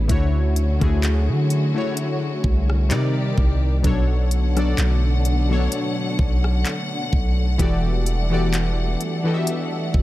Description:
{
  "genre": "contemporary R&B",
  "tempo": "64 BPM",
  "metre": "4/4",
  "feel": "swing 54% on 16ths",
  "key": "unclear",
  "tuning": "A4 = 440 Hz",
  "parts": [
    { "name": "warm analog keys", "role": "accompaniment", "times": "0.0-10.0 s", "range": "B2 to E5", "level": "-24 LUFS", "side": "left 2 dB", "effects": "chorus" },
    { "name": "warm studio string section", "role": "sustained chords", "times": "0.0-10.0 s", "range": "D3 to F#5", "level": "-28 LUFS", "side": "equal", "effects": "sidechain pumping" },
    { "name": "long sustained 808-style bass", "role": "bass", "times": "0.0-10.0 s", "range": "E1 to D3", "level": "-20 LUFS", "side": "equal", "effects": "none" },
    { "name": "trap drum kit", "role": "drums", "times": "0.1-10.0 s", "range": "handclaps, hi-hat, kick drum, rim click", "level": "-22 LUFS", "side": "equal", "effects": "none" }
  ],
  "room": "little or no reverb",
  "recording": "none",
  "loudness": "-18 LUFS",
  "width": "side -16 dB against mid",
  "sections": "0.0-10.0 A section",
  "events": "none",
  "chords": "0.1 Dmaj7; 2.9 Cm9; 3.8 Bm9; 7.6 Em11",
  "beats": "| 0.10 1.03 1.97 2.91 | 3.85 4.78 5.72 6.66 | 7.59 8.53 9.47"
}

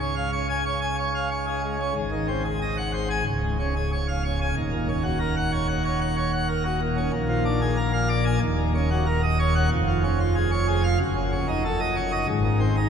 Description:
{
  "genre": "classical, organ toccata",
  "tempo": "93 BPM",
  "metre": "4/4",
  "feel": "straight",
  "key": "Db major",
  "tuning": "A4 = 442 Hz",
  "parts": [
    { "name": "pipe organ, plenum", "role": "solo", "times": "0.0-12.9 s", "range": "Db1 to Ab5", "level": "-22 LUFS", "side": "equal", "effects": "none" }
  ],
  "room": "wet cathedral reverb, RT60 6.0 s",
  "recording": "minimal, uncompressed stereo recording",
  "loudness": "-22 LUFS",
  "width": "side -7 dB against mid",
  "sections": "0.0-12.9 A section",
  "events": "none",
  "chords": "0.0 Db; 2.0 Ab7; 3.3 Db; 4.6 Ebm7; 7.1 Bb7; 8.4 Ebm7; 9.7 Db/F; 11.0 Ebm7b5/Gb; 12.3 Ab",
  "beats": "0.64 1.30 | 1.95 2.61 3.26 3.92 | 4.56 5.21 5.85 6.50 | 7.14 7.78 8.43 9.07 | 9.72 10.37 11.01 11.65 | 12.30"
}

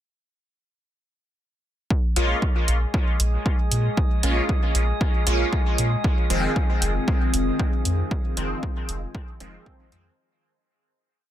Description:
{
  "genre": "dub techno",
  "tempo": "116 BPM",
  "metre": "4/4",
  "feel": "swing 54% on 16ths",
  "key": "unclear",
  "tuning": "A4 = 440 Hz",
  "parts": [
    { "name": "electronic kick drum", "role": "drums", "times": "1.9-9.8 s", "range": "none", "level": "-23 LUFS", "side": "equal", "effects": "overdrive" },
    { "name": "drifting glass-harmonics texture", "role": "texture", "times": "2.7-10.2 s", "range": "Ab3 to Ab4", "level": "-32 LUFS", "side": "equal", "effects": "chorus, built-in reverb, sidechain pumping" },
    { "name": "resonant sweep polysynth", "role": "stabs", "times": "2.2-10.1 s", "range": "Eb3 to F4", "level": "-28 LUFS", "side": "equal", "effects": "chorus, phaser, sidechain pumping, dub echo" },
    { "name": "soft dub sub bass", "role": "bass", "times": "2.2-10.1 s", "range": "F1 to Bb2", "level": "-23 LUFS", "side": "equal", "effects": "sidechain pumping" },
    { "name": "electronic hi-hat", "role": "drums", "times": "2.2-10.0 s", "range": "none", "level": "-26 LUFS", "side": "right 2 dB", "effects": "overdrive" },
    { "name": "warbly tape-like pad", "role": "sustained chords", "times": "6.5-10.1 s", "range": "Eb3 to Ab4", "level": "-30 LUFS", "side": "left 3 dB", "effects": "chorus, built-in reverb, vintage 12-bit sampler grit, sidechain pumping" }
  ],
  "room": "little or no reverb",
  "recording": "dense, heavily limited modern master",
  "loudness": "-20 LUFS",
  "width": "side -12 dB against mid",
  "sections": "1.9-10.2 groove",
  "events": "fade-out 7.4-10.2",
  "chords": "1.9 Bbm7; 6.0 Fm7",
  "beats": "| 1.91 2.42 2.94 3.46 | 3.97 4.49 5.01 5.53 | 6.04 6.56 7.08 7.59 | 8.11 8.63 9.15 9.66"
}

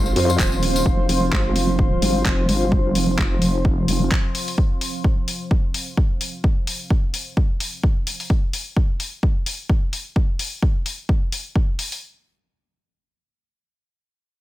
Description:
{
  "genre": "bass house",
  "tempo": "129 BPM",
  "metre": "4/4",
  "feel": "swing 56% on 16ths",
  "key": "unclear",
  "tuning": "A4 = 444 Hz",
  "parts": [
    { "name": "sweeping resonant pad", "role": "sustained chords", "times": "0.0-8.3 s", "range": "F3 to F5", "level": "-28 LUFS", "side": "right 2 dB", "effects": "chorus, sidechain pumping" },
    { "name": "vowel-sweep wobble bass", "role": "bass", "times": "0.0-4.1 s", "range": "Eb1 to F2", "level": "-20 LUFS", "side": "equal", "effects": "chorus, tube saturation, sidechain pumping" },
    { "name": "downlifter", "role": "sound effects", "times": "0.0-0.9 s", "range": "none", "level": "-45 LUFS", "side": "equal", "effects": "none" },
    { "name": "warbly tape-like pad", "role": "texture", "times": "0.0-4.6 s", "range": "F4 to C6", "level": "-27 LUFS", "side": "equal", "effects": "chorus, built-in reverb, phaser, sidechain pumping" },
    { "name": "tambourine", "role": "percussion", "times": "0.1-0.8 s", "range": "none", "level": "-30 LUFS", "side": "left 4 dB", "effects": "none" },
    { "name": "garage drum kit", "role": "drums", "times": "0.2-12.0 s", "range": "handclaps, hi-hat", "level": "-26 LUFS", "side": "left 2 dB", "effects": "studio reverb" },
    { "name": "electronic kick drum", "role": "drums", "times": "0.4-11.7 s", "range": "none", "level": "-19 LUFS", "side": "equal", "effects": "studio reverb" }
  ],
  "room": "little or no reverb",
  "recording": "none",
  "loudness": "-18 LUFS",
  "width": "side -16 dB against mid",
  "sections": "0.0-12.0 A section",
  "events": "filter sweep on wobble bass 0.0-4.6",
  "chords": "0.0 F5",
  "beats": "0.39 | 0.86 1.32 1.79 2.25 | 2.72 3.18 3.65 4.11 | 4.58 5.04 5.51 5.97 | 6.44 6.91 7.37 7.83 | 8.30 8.77 9.23 9.70 | 10.16 10.62 11.09 11.56"
}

